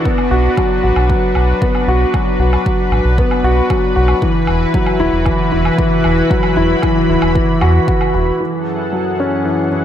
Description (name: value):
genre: piano and strings electronica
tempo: 115 BPM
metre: 4/4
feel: straight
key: unclear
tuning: A4 = 440 Hz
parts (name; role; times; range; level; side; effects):
- lush unison pad; sustained chords; 0.0-9.8 s; F#2 to B5; -20 LUFS; equal; chorus, sidechain pumping
- warm concert grand piano; riff; 0.0-9.8 s; E3 to F#4; -15 LUFS; left 1 dB; digital delay
- electronic kick drum; drums; 0.1-8.0 s; none; -18 LUFS; equal; none
- woodblock; drums; 0.2-8.1 s; none; -26 LUFS; equal; none
- round analog bass; bass; 0.3-8.3 s; D1 to E2; -15 LUFS; equal; sidechain pumping
room: light reverb, digital ambience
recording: none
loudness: -12 LUFS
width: side -10 dB against mid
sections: 0.0-8.4 A section; 8.4-9.8 B section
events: none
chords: 0.1 Bm; 4.2 Esus2; 8.4 F#m7